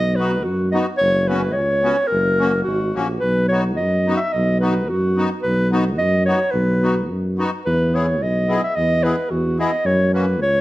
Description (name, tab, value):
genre	alpine folk, alpine dance band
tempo	109 BPM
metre	2/4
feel	straight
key	B major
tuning	A4 = 441 Hz
part	mellow clarinet	melody	0.0-10.6 s	F#4 to E5	-20 LUFS	equal	none
part	mellow tuba	bass	0.0-10.6 s	F#1 to F#2	-20 LUFS	equal	none
part	accordion	accompaniment	0.2-10.3 s	A#3 to G#4	-25 LUFS	left 2 dB	light tremolo tuning
room	moderate recital hall reverb, RT60 1.3 s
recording	dark, warm production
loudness	-16 LUFS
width	side -17 dB against mid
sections	0.0-10.6 A section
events	none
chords	0.0 B; 1.0 F#sus4; 2.1 F#; 3.2 B; 7.7 E; 9.9 F#